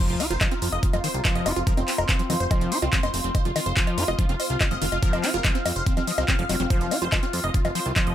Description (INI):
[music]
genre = psychedelic trance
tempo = 143 BPM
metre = 4/4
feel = straight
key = unclear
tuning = A4 = 440 Hz
[part]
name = supersaw stab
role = melody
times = 0.0-8.1 s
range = C4 to F5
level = -31 LUFS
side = right 1 dB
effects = phaser, sidechain pumping, dub echo
[part]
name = overdriven acid bass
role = riff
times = 0.0-8.1 s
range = Eb3 to F4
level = -30 LUFS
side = moving between left 1 dB and right 5 dB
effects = distortion, auto-pan, sidechain pumping, dub echo
[part]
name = sub drop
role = sound effects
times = 0.0-1.7 s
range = none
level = -39 LUFS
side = equal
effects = none
[part]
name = airy breathy pad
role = texture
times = 0.0-8.1 s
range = C4 to F6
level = -31 LUFS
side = left 1 dB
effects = chorus, sidechain pumping
[part]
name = fat analog bass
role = bass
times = 0.1-8.1 s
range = F1 to F2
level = -28 LUFS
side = equal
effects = none
[part]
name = drum and bass drum kit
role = drums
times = 0.1-8.1 s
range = bongos, handclaps, hi-hat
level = -27 LUFS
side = left 1 dB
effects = overdrive
[part]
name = electronic kick drum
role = drums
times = 0.4-8.0 s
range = none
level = -23 LUFS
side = equal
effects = overdrive
[sound]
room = digital ambience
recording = none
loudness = -21 LUFS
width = side -11 dB against mid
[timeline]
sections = 0.0-8.1 A section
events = drop 0.0-8.1; impact 0.0-1.7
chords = 0.0 F5